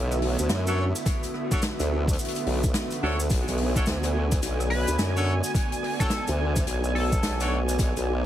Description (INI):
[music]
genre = glitch hop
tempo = 107 BPM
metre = 4/4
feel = swing 62% on 16ths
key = B dorian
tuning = A4 = 441 Hz
[part]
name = muted studio string section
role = sustained chords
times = 0.0-8.3 s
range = D3 to G#5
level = -34 LUFS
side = right 2 dB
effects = sidechain pumping
[part]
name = formant-sweep wobble bass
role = bass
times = 0.0-8.3 s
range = B1 to F#2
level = -26 LUFS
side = equal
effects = chorus
[part]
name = airy breathy pad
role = texture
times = 0.0-8.3 s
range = B3 to E5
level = -32 LUFS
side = equal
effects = chorus, sidechain pumping
[part]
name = swinging big-band drum kit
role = drums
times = 0.1-8.1 s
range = hi-hat, rim click, snare drum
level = -33 LUFS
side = left 1 dB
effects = none
[part]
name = cabasa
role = percussion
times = 0.1-8.0 s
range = none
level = -36 LUFS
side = right 1 dB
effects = none
[part]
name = bright horn section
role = stabs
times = 0.7-7.6 s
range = D4 to C#5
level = -33 LUFS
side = equal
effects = sidechain pumping, digital delay
[part]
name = electronic kick drum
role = drums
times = 1.1-7.9 s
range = none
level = -26 LUFS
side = equal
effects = overdrive
[part]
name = sync lead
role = melody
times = 4.7-7.4 s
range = A4 to B4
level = -33 LUFS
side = left 1 dB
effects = chorus, digital delay
[sound]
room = light reverb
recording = heavily compressed radio sound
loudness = -23 LUFS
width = side -12 dB against mid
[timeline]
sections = 0.0-8.3 A section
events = none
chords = 0.0 Bm7